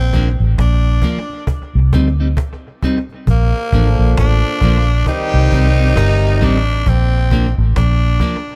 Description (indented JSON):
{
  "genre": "roots reggae",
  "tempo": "67 BPM",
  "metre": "4/4",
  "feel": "swing 59% on 16ths",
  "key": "Bb major",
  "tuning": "A4 = 438 Hz",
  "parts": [
    { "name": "growling tenor saxophone", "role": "melody", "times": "0.0-8.6 s", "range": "Bb3 to Eb4", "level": "-24 LUFS", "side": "equal", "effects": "dub echo" },
    { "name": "vintage muted fingered electric bass", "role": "bass", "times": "0.0-8.2 s", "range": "G1 to D2", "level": "-15 LUFS", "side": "equal", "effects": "none" },
    { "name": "clean electric guitar", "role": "accompaniment", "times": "0.1-8.4 s", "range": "F3 to Eb4", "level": "-24 LUFS", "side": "equal", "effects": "none" },
    { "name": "cajon", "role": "drums", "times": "0.1-8.6 s", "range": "none", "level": "-23 LUFS", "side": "equal", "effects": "tape echo" },
    { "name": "dark horn section", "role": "second line", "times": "3.7-6.6 s", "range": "Bb2 to G4", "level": "-24 LUFS", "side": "equal", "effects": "dub echo" }
  ],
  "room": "small room ambience",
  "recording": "none",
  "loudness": "-15 LUFS",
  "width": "mono",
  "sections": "0.0-8.6 A section",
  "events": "none",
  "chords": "0.0 Bb; 1.5 Cm; 3.3 Bb; 5.1 Cm; 6.9 Bb"
}